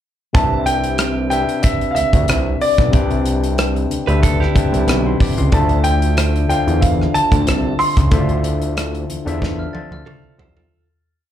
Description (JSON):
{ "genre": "lush 1970s-style soul", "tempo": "93 BPM", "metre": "4/4", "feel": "swing 54% on 16ths", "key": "C major", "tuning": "A4 = 441 Hz", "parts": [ { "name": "warm concert grand piano", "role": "melody", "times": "0.3-8.4 s", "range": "D5 to C6", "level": "-20 LUFS", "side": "equal", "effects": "plate reverb, slapback echo" }, { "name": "overdriven tine electric piano", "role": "accompaniment", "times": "0.3-10.7 s", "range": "C3 to D6", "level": "-22 LUFS", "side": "left 4 dB", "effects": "plate reverb, slapback echo" }, { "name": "fat analog bass", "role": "bass", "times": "0.3-10.7 s", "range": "B1 to E2", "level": "-18 LUFS", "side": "right 1 dB", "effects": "none" }, { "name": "modern studio drum kit", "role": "drums", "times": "0.3-10.7 s", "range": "hi-hat, kick drum, rim click, snare drum, toms", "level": "-18 LUFS", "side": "equal", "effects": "none" }, { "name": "direct-recorded clean electric guitar", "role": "riff", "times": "4.1-5.3, 10.1-10.9 s", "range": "E4 to C5", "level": "-23 LUFS", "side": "right 9 dB", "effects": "slapback echo" }, { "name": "glockenspiel with soft plastic mallets", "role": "texture", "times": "9.6-10.7 s", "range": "F6 to A6", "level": "-39 LUFS", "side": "equal", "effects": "none" } ], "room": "light reverb", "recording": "live gig heard through the venue's PA, club reverb", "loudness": "-14 LUFS", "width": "side -11 dB against mid", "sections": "0.3-10.7 verse", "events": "fade-out 8.1-10.7; drum fill 9.4-10.7", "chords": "0.3 Cmaj9; 5.5 Dm7", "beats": "| 0.35 0.99 1.64 2.29 | 2.94 3.58 4.23 4.88 | 5.53 6.18 6.83 7.47 | 8.12 8.77 9.42 10.07" }